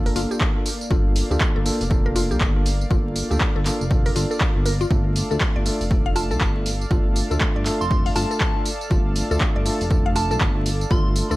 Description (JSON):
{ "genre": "deep house", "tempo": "120 BPM", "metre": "4/4", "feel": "swing 61% on 16ths", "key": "G minor", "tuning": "A4 = 441 Hz", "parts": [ { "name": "warm analog pad", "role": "sustained chords", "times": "0.0-11.4 s", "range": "Bb3 to A5", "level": "-33 LUFS", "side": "equal", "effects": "chorus, vintage 12-bit sampler grit, sidechain pumping" }, { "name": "bell-like tine electric piano", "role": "stabs", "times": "0.0-11.4 s", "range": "A3 to A4", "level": "-27 LUFS", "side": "equal", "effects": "sidechain pumping, tape echo" }, { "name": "smooth synth bass", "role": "bass", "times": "0.0-11.4 s", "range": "F1 to D2", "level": "-24 LUFS", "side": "equal", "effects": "sidechain pumping" }, { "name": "mallet-like synth pluck", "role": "arpeggios", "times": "0.1-11.3 s", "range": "F4 to F5", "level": "-30 LUFS", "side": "left 2 dB", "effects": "chorus, sidechain pumping, tape echo" }, { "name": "punchy analog drum machine", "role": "drums", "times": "0.1-11.4 s", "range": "handclaps, hi-hat, tambourine", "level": "-27 LUFS", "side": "equal", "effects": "none" }, { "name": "electronic kick drum", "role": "drums", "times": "0.4-11.0 s", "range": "none", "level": "-22 LUFS", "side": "equal", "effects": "none" }, { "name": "soft synth bell", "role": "melody", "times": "6.2-11.1 s", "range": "A5 to C6", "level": "-29 LUFS", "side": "right 2 dB", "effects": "chorus, phaser, tape echo" } ], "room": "little or no reverb", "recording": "vinyl crackle", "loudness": "-18 LUFS", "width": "side -18 dB against mid", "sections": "0.0-11.4 A section", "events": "none", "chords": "0.0 Gm9; 4.9 Dm", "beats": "0.41 | 0.91 1.41 1.91 2.41 | 2.91 3.41 3.91 4.41 | 4.91 5.41 5.91 6.41 | 6.91 7.41 7.91 8.41 | 8.91 9.41 9.91 10.41 | 10.91" }